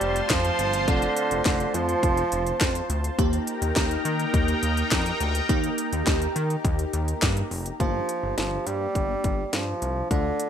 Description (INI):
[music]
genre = synth-pop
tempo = 104 BPM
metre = 4/4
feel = straight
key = G minor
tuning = A4 = 439 Hz
[part]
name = warm bassoon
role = melody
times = 0.0-2.9, 7.8-10.5 s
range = D3 to G3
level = -26 LUFS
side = right 3 dB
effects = none
[part]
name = FM electric piano with soft pad layer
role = accompaniment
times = 0.0-10.5 s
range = A3 to G4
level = -32 LUFS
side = left 1 dB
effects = chorus, phaser
[part]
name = sweeping resonant pad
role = sustained chords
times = 0.0-7.8 s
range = Eb4 to C6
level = -29 LUFS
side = left 1 dB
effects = chorus
[part]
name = chorused synth bass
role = bass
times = 0.0-10.3 s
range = F1 to Eb3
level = -28 LUFS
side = left 1 dB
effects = none
[part]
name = house drum kit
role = drums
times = 0.0-10.5 s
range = handclaps, hi-hat, kick drum, snare drum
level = -26 LUFS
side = left 1 dB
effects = overdrive
[sound]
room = moderate plate reverb, RT60 1.2 s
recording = bright 1980s-style digital production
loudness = -22 LUFS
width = side -8 dB against mid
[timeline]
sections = 0.0-7.8 A section; 7.8-10.5 B section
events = none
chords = 0.0 F; 3.2 Eb; 7.8 Gm7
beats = 0.30 | 0.88 1.46 2.03 2.61 | 3.19 3.76 4.34 4.92 | 5.49 6.07 6.65 7.22 | 7.80 8.38 8.96 9.53 | 10.11